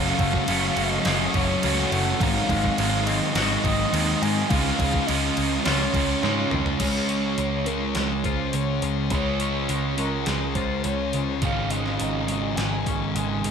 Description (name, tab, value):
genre	rock, shoegaze and dream pop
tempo	104 BPM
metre	4/4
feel	straight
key	Db major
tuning	A4 = 440 Hz
part	mellow horn-like synth lead	melody	0.0-13.4 s	Ab4 to Ab5	-30 LUFS	equal	chorus, tape echo
part	twangy electric guitar	arpeggios	0.0-13.5 s	Eb3 to Ab4	-33 LUFS	left 9 dB	lush chorus, tape echo
part	crunchy overdriven guitar	riff	0.0-13.5 s	Gb2 to Gb4	-27 LUFS	right 9 dB	reverse reverb
part	thick fuzz guitar	riff	0.0-13.5 s	Gb2 to Db4	-28 LUFS	left 10 dB	distortion, wide subtle chorus
part	vintage muted picked electric bass	bass	0.0-13.5 s	Gb1 to Ab2	-28 LUFS	equal	none
part	gated 80s digital drum machine	drums	0.2-13.5 s	crash cymbal, hi-hat, kick drum, snare drum, toms	-28 LUFS	right 1 dB	gated reverb, gated reverb snare, overdrive
room	moderate huge ambient reverb, RT60 6.1 s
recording	dreamy mix soaked in reverb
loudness	-21 LUFS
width	side -7 dB against mid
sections	0.0-6.8 A section; 6.8-13.5 B section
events	drum fill 6.2-6.8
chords	0.0 Gbmadd9; 2.2 Ab7; 4.5 Db; 11.4 Absus4